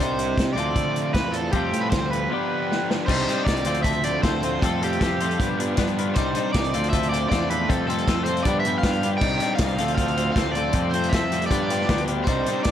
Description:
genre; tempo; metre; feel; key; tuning
indie rock; 156 BPM; 4/4; straight; G mixolydian; A4 = 440 Hz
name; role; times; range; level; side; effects
crunchy overdriven guitar; melody; 0.0-12.7 s; G4 to G5; -27 LUFS; right 2 dB; none
thick fuzz guitar; riff; 0.0-12.7 s; F3 to G4; -28 LUFS; right 6 dB; distortion, wide subtle chorus, tape echo
twelve-string electric guitar; riff; 0.0-12.7 s; F3 to A4; -27 LUFS; left 11 dB; none
fuzz picked electric bass; bass; 0.0-12.7 s; C2 to D3; -28 LUFS; equal; overdrive
vintage drum kit; drums; 0.0-12.7 s; crash cymbal, hi-hat, kick drum, snare drum; -26 LUFS; equal; none
brassy analog pad; sustained chords; 3.1-12.7 s; F4 to D6; -36 LUFS; equal; none
room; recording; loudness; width
light reverb, studio reverb; none; -20 LUFS; side -10 dB against mid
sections
0.0-3.1 A section; 3.1-12.7 B section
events
drum fill 2.7-3.1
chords
0.0 Cmadd9; 0.6 Dm7; 1.5 Fadd9; 2.3 G7; 3.1 Cmadd9; 3.7 Dm7; 4.6 Fadd9; 5.4 G7; 6.2 Cmadd9; 6.7 Dm7; 7.7 Fadd9; 8.5 G7; 9.2 Cmadd9; 9.8 Dm7; 10.8 Fadd9; 11.5 G7

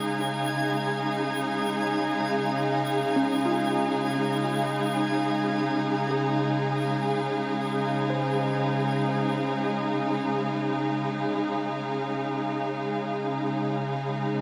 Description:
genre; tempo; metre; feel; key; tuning
ambient; free time; none; none; Db major; A4 = 436 Hz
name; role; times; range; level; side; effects
rich symphonic string section; sustained chords; 0.0-14.4 s; Db3 to F5; -27 LUFS; equal; shimmer reverb
soft round pluck; arpeggios; 0.0-9.5 s; Db4 to C5; -37 LUFS; equal; none
twinkling granular texture; texture; 0.0-9.1 s; Ab6; -40 LUFS; equal; built-in reverb, shimmer reverb
room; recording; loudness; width
wet cathedral reverb, RT60 6.2 s; in a vast, echoing space; -27 LUFS; mono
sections
0.0-9.1 A section; 9.1-14.4 B section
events
none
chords
0.0 Dbmaj7

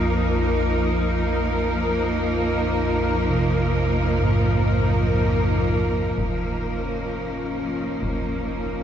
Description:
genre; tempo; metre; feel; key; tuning
dark ambient drone; free time; none; none; Bb minor; A4 = 440 Hz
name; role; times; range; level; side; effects
bright symphonic cello section; sustained chords; 0.0-8.8 s; F3 to Bb4; -22 LUFS; equal; none
gamelan-type bossed gongs; arpeggios; 0.0-8.8 s; Bb1 to C3; -28 LUFS; right 1 dB; ping-pong delay
deep rumbling drone; drone; 0.0-8.8 s; Bb1 to F2; -25 LUFS; equal; built-in reverb, lush chorus
quartz singing bowl; texture; 0.0-8.8 s; none; barely audible; none; none
concert bass drum; percussion; 6.2-8.2 s; none; -31 LUFS; equal; low-pass filter on kick
room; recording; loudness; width
wet lush hall reverb, RT60 2.9 s; dreamy mix soaked in reverb, nothing above 7.9 kHz; -20 LUFS; side -9 dB against mid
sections
0.0-6.2 A section; 6.2-8.8 B section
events
none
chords
0.0 Bb5; 6.2 Bbm

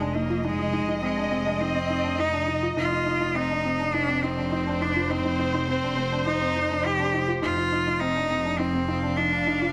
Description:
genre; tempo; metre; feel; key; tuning
piano and strings electronica; 103 BPM; 4/4; straight; unclear; A4 = 440 Hz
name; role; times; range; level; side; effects
bright cello; melody; 0.0-9.7 s; Ab3 to G4; -28 LUFS; equal; none
dark symphonic string section; sustained chords; 0.0-9.7 s; F3 to F5; -34 LUFS; equal; none
felt-muted upright piano; riff; 0.0-9.7 s; C4 to F4; -32 LUFS; equal; none
rich chamber double bass section; bass; 0.0-9.7 s; F1; -33 LUFS; equal; none
room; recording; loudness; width
moderate recital hall reverb, RT60 1.4 s, small room reverb; none; -25 LUFS; mono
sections
0.0-9.7 A section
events
none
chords
0.0 Ebmaj7sus2/F

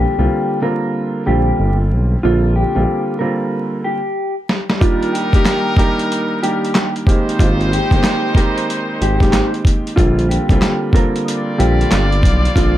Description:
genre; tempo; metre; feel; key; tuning
hip hop, boom-bap hip-hop; 93 BPM; 4/4; swing 63% on 16ths; Bb mixolydian; A4 = 440 Hz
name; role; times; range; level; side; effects
mellow electric guitar; melody; 0.0-12.8 s; F4 to Bb4; -21 LUFS; left 1 dB; lush chorus, high-pass filter, low-pass filter, ping-pong delay
dark concert grand piano; accompaniment; 0.0-12.8 s; D3 to G4; -19 LUFS; right 2 dB; cassette tape, high-pass filter, low-pass filter
smooth synth bass; bass; 0.0-2.9, 7.4-12.8 s; G1 to C2; -16 LUFS; equal; none
dusty soul sampler-style drum kit; drums; 4.5-12.8 s; handclaps, hi-hat, kick drum, snare drum; -15 LUFS; equal; overdrive
brilliant trumpet section; stabs; 4.8-12.8 s; G3 to D5; -23 LUFS; left 1 dB; high-pass filter, low-pass filter, ping-pong delay
room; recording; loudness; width
light reverb; vinyl crackle; -13 LUFS; side -13 dB against mid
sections
0.0-4.8 A section; 4.8-12.8 B section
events
stop 3.5-4.8; drum fill 4.2-4.8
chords
0.0 Bb69; 4.8 Ebmaj7; 7.1 Abmaj9; 10.0 Bb69

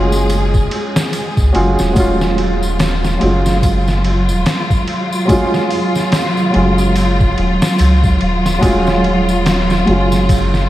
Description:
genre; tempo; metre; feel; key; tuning
trip hop; 72 BPM; 4/4; swing 59% on 16ths; Eb minor; A4 = 440 Hz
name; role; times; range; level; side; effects
felt-muted upright piano; accompaniment; 0.0-10.7 s; Gb3 to F4; -18 LUFS; right 1 dB; harmonic tremolo, tape echo
warm studio string section; sustained chords; 0.0-10.7 s; Gb3 to Ab4; -17 LUFS; equal; none
soft dub sub bass; bass; 0.0-10.7 s; Eb1 to Db2; -16 LUFS; equal; none
tambourine; percussion; 0.1-10.7 s; none; -31 LUFS; left 1 dB; none
trip hop sampler-style drum kit; drums; 0.3-10.7 s; hi-hat, kick drum, ride cymbal, snare drum; -18 LUFS; equal; studio reverb
room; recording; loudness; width
moderate lush hall reverb, RT60 2.8 s; dreamy mix soaked in reverb, vinyl crackle; -12 LUFS; side -14 dB against mid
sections
0.0-10.7 A section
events
none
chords
0.0 Ebm11

